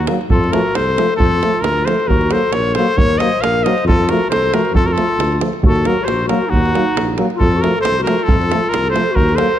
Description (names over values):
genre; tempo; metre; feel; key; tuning
balkan folk, Balkan brass band; 135 BPM; 2/4; straight; F phrygian dominant; A4 = 440 Hz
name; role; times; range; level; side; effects
bright trumpet; melody; 0.0-9.6 s; Gb4 to F5; -18 LUFS; left 1 dB; none
dark clarinet; second line; 0.0-9.6 s; Eb4 to C5; -20 LUFS; left 2 dB; none
mellow tuba; bass; 0.0-9.4 s; Bb1 to F2; -21 LUFS; equal; none
clear euphonium; accompaniment; 0.1-9.5 s; A3 to Bb3; -24 LUFS; left 5 dB; none
warm trombone; accompaniment; 0.1-9.5 s; F3 to Gb3; -25 LUFS; right 5 dB; none
davul; percussion; 0.1-9.5 s; none; -19 LUFS; right 2 dB; none
room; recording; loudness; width
moderate scoring stage reverb, RT60 1.9 s; dark, warm production; -13 LUFS; side -11 dB against mid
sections
0.0-5.6 A section; 5.6-9.6 A section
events
none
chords
0.3 F; 2.1 Ebm; 3.9 F; 5.6 Ebm; 7.4 F